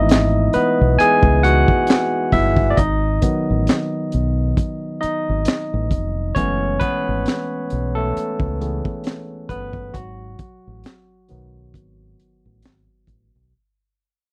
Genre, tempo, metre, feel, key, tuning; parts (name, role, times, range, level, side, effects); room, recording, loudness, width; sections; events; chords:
R&B, neo-soul; 67 BPM; 4/4; swing 56% on 16ths; A4 = 440 Hz
barky tine electric piano; accompaniment; 0.0-13.5 s; D#3 to G#5; -22 LUFS; equal
deep dub fingered electric bass; bass; 0.0-13.5 s; E#1 to C#2; -23 LUFS; equal
crunchy breakbeat drum kit; drums; 0.1-13.3 s; handclaps, hi-hat, kick drum, snare drum; -22 LUFS; equal
little or no reverb; dry, close 1970s-style studio recording; -19 LUFS; mono
0.0-13.5 A section
tine electric piano solo 0.0-13.5; fade-out 1.3-13.5
0.0 F#m11; 2.8 G#m7; 6.4 F#m11 (rootless); 9.9 G#m7